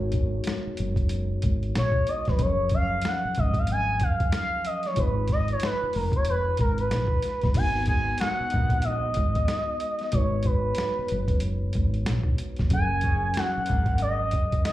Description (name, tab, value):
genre	R&B, neo-soul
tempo	93 BPM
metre	4/4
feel	swing 60% on 16ths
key	G# dorian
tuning	A4 = 439 Hz
part	expressive portamento lead	melody	0.0-14.7 s	A#4 to G#5	-27 LUFS	equal	chorus, slapback echo
part	mellow tine electric piano	accompaniment	0.0-14.7 s	E#3 to C#5	-35 LUFS	left 1 dB	medium stereo tremolo, slapback echo
part	woody fretless electric bass	bass	0.0-14.6 s	E#1 to A#1	-27 LUFS	equal	wide subtle chorus
part	boom bap sampler-style drum kit	drums	0.1-14.7 s	crash cymbal, hi-hat, kick drum, snare drum	-26 LUFS	equal	none
part	mellow horn section	stabs	7.9-9.1, 13.0-14.3 s	C#3 to G#4	-39 LUFS	left 3 dB	slapback echo
room	little or no reverb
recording	live gig heard through the venue's PA, club reverb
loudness	-23 LUFS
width	side -15 dB against mid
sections	0.0-7.5 A section; 7.5-14.7 B section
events	analog synth lead solo 0.0-7.5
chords	0.0 G#m9; 2.4 F#maj9; 5.0 G#m6; 7.5 G#m9; 12.7 F#maj9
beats	0.45 1.10 1.74 | 2.39 3.03 3.68 4.32 | 4.97 5.61 6.26 6.90 | 7.55 8.20 8.84 9.48 | 10.13 10.78 11.42 12.07 | 12.71 13.36 14.00 14.65